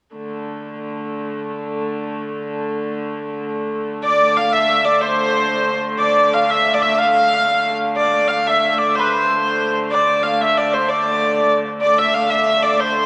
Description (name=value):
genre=medieval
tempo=123 BPM (dotted quarters)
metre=6/8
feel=straight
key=D minor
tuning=A4 = 439 Hz
part: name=warm hurdy-gurdy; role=drone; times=0.2-13.1 s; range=D3 to A3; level=-27 LUFS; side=equal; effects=none
part: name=rich hurdy-gurdy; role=melody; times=4.0-13.1 s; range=B4 to F5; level=-17 LUFS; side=equal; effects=none
room=wet church reverb, RT60 3.2 s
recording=worn, warbling old tape, cassette tape, warbly pitch drift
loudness=-18 LUFS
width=mono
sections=0.2-4.1 A section; 4.1-11.8 B section; 11.8-13.1 B section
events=none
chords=none